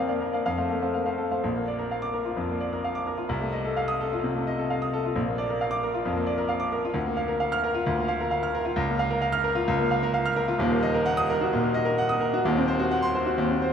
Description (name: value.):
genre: classical, virtuoso piano study.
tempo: 130 BPM.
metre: 4/4.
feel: rubato.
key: Bb major, Bb minor from 8.8 s.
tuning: A4 = 441 Hz.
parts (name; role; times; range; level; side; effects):
bright grand piano; solo; 0.0-13.7 s; Eb1 to F6; -24 LUFS; equal; none.
room: wet cathedral reverb, RT60 5.3 s.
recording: in a vast, echoing space.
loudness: -24 LUFS.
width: side -7 dB against mid.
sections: 0.0-1.4 A section; 1.4-13.7 B section.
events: none.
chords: 0.5 F; 1.4 Bb; 3.3 F7/C; 5.1 Bb; 7.0 Bb/D; 8.8 Bbm/Db; 10.6 Ebm; 12.4 Cdim/Eb.